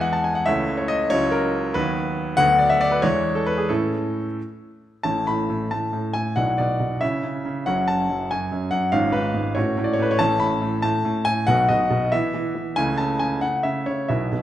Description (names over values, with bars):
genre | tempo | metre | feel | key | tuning
classical-period piano sonatina | 93 BPM (dotted quarters) | 6/8 | rubato | A major | A4 = 440 Hz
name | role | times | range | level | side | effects
bright grand piano | solo | 0.0-14.4 s | F#1 to B5 | -20 LUFS | equal | none
room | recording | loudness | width
wet recital hall reverb, RT60 1.6 s | none | -20 LUFS | side -12 dB against mid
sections
0.0-5.1 A section; 5.1-14.4 B section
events
none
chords
0.5 A/C#; 1.1 F#7/C#; 1.7 B/D#; 2.4 Bm/D; 3.0 E7; 3.7 A; 6.4 E5/B; 7.0 C#m; 7.7 F#m; 8.9 C#7/G#; 9.6 F#m/A; 10.2 A; 11.5 B; 12.1 E5; 12.8 A/C#